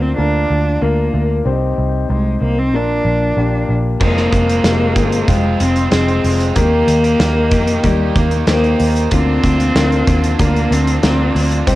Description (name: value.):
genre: piano-driven pop.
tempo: 94 BPM.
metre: 4/4.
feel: straight.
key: unclear.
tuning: A4 = 440 Hz.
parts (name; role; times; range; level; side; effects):
rich cello; melody; 0.0-11.8 s; G3 to D4; -17 LUFS; equal; cassette tape.
warm concert grand piano; accompaniment; 0.0-11.8 s; Bb2 to C5; -21 LUFS; left 5 dB; cassette tape.
vintage muted picked electric bass; bass; 0.0-11.8 s; F1 to F2; -16 LUFS; right 1 dB; none.
biting overdriven guitar; riff; 4.0-11.8 s; F2 to G4; -25 LUFS; right 8 dB; cassette tape.
loose indie drum kit; drums; 4.0-11.8 s; crash cymbal, hi-hat, kick drum, snare drum; -19 LUFS; equal; cassette tape.
room: light reverb, small room ambience.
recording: home recording on cassette.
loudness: -12 LUFS.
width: side -16 dB against mid.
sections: 0.0-4.0 A section; 4.0-11.8 B section.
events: none.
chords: 0.0 Bb/D; 1.5 Cm; 2.7 Bb; 4.0 Fm; 6.6 Eb; 9.1 Bb/D.